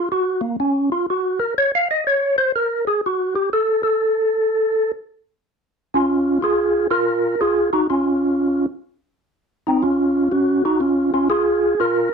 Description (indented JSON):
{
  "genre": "jazz",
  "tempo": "123 BPM",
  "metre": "4/4",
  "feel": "swing 67% on 8ths",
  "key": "Bb harmonic minor",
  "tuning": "A4 = 441 Hz",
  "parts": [
    { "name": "percussive tonewheel organ", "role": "solo", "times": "0.0-12.1 s", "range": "Bb3 to F5", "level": "-17 LUFS", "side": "equal", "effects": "fast rotary speaker" }
  ],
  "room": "light reverb",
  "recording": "dark, warm production",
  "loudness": "-17 LUFS",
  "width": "side -5 dB against mid",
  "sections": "0.0-5.9 A section; 5.9-12.1 B section",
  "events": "tonewheel organ solo 0.0-5.9",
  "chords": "0.0 N.C.; 5.9 Bbm7",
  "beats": "| 0.08 0.56 1.05 1.54 | 2.02 2.51 3.00 3.48 | 3.97 4.46 4.95 5.43 | 5.92 6.41 6.89 7.38 | 7.87 8.36 8.85 9.34 | 9.82 10.31 10.80 11.29 | 11.78"
}